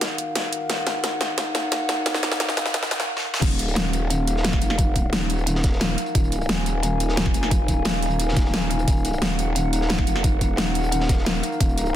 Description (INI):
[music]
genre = dark technical drum and bass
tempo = 176 BPM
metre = 4/4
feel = straight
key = Eb minor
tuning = A4 = 440 Hz
[part]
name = dark analog pad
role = sustained chords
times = 0.0-12.0 s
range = Eb4 to Bb5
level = -27 LUFS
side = left 1 dB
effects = lush chorus, sidechain pumping
[part]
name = dubstep drum kit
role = drums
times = 0.0-11.8 s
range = crash cymbal, hi-hat, snare drum, toms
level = -24 LUFS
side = equal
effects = overdrive, high-pass filter on hats, high-pass filter on snare, high-pass filter on toms, high-pass filter on cymbals, high-pass filter on room
[part]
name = growl bass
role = bass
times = 3.4-11.9 s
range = Eb1 to F1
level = -24 LUFS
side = equal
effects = chorus, tube saturation, sidechain pumping
[part]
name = crunchy breakbeat drum kit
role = drums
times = 3.4-11.9 s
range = hi-hat, snare drum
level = -34 LUFS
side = equal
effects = high-pass filter on hats, high-pass filter on snare, high-pass filter on room
[part]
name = electronic kick drum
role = drums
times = 3.4-11.7 s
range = none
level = -21 LUFS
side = equal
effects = overdrive
[sound]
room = light reverb, digital ambience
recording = dense, heavily limited modern master, high-pass filter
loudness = -20 LUFS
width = side -11 dB against mid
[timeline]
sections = 0.0-3.4 A section; 3.4-12.0 B section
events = build-up 0.0-3.4; drum fill 0.0-3.1, 3.2; drop 3.4-12.0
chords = 0.0 Ebmadd9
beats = 0.01 0.35 | 0.70 1.04 1.38 1.72 | 2.06 2.40 2.74 3.08 | 3.42 3.76 4.11 4.45 | 4.79 5.13 5.47 5.81 | 6.15 6.49 6.83 7.17 | 7.51 7.86 8.20 8.54 | 8.88 9.22 9.56 9.90 | 10.24 10.58 10.92 11.26 | 11.61 11.95